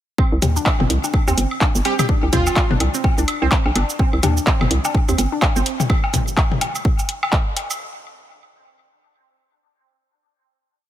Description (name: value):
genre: minimal techno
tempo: 126 BPM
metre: 4/4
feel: swing 59% on 16ths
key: C minor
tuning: A4 = 444 Hz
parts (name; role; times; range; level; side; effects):
- resonant blip pluck; riff; 0.2-5.6 s; C4 to D4; -27 LUFS; right 1 dB; chorus, sidechain pumping, dub echo
- electronic kick drum; drums; 0.2-7.4 s; none; -18 LUFS; equal; none
- electronic woodblock and toms; percussion; 0.2-7.8 s; none; -24 LUFS; left 2 dB; ping-pong delay
- hollow knocking FM bass; bass; 0.3-5.6 s; G1 to Eb2; -19 LUFS; equal; sidechain pumping
- booming analog drum machine; drums; 0.4-7.8 s; cabasa, handclaps, hi-hat; -24 LUFS; equal; none
- plucky unison lead; melody; 1.9-2.7 s; F4 to G4; -24 LUFS; right 2 dB; ping-pong delay
room: little or no reverb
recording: none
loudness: -16 LUFS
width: side -12 dB against mid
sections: 0.2-7.8 drop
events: drop 0.2-7.8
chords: 0.2 C5